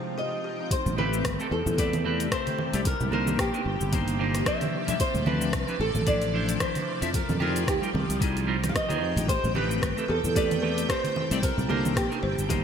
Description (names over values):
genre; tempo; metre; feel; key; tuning
sunset chillout; 112 BPM; 4/4; swing 56% on 16ths; A minor; A4 = 441 Hz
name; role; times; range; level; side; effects
flamenco guitar; melody; 0.0-12.6 s; G4 to F5; -30 LUFS; equal; lush chorus, digital delay
clean electric guitar; accompaniment; 0.0-12.6 s; F3 to E5; -31 LUFS; left 1 dB; auto-pan, digital delay
shimmering ambient pad; sustained chords; 0.0-12.6 s; C3 to G5; -34 LUFS; equal; chorus, built-in reverb, phaser
buzzing kalimba; arpeggios; 0.0-0.5, 9.3-12.6 s; G4 to C5; -37 LUFS; left 1 dB; digital delay
electronic kick drum; drums; 0.7-12.6 s; none; -30 LUFS; equal; none
smooth R&B drum kit; drums; 0.7-12.6 s; cabasa, congas, hi-hat, rim click; -32 LUFS; right 2 dB; low-pass filter on hats, low-pass filter on perc, low-pass filter on snare, gated reverb
sustaining fretless electric bass; bass; 0.9-12.6 s; G1 to F2; -29 LUFS; equal; analog chorus
congas; percussion; 0.9-12.5 s; none; -34 LUFS; right 1 dB; none
room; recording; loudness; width
moderate lush hall reverb, RT60 1.5 s, digital ambience; bright 1980s-style digital production; -24 LUFS; side -8 dB against mid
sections
0.7-12.6 A section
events
none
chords
0.0 Fm9; 0.7 Am9; 2.9 Cm9; 4.7 Dm9; 7.1 Fm9; 9.3 Am9; 11.4 Cm9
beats
0.18 | 0.71 1.25 1.79 2.32 | 2.86 3.39 3.93 4.46 | 5.00 5.54 6.07 6.61 | 7.14 7.68 8.21 8.75 | 9.29 9.82 10.36 10.89 | 11.43 11.96 12.50